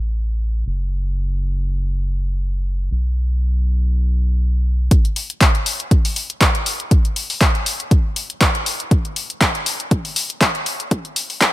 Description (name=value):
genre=deep house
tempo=120 BPM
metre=4/4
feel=swing 55% on 16ths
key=unclear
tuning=A4 = 440 Hz
part: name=round analog bass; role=bass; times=0.0-4.9 s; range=F#1 to B1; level=-18 LUFS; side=equal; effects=sidechain pumping
part: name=electronic kick drum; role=drums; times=4.9-11.5 s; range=none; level=-15 LUFS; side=equal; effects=overdrive
part: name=punchy analog drum machine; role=drums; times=4.9-11.5 s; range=handclaps, hi-hat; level=-19 LUFS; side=left 1 dB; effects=none
room=little or no reverb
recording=high-pass filter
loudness=-16 LUFS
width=side -16 dB against mid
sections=0.0-4.9 A section; 4.9-11.5 B section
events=build-up 4.9-11.5; filter sweep 4.9-11.5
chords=none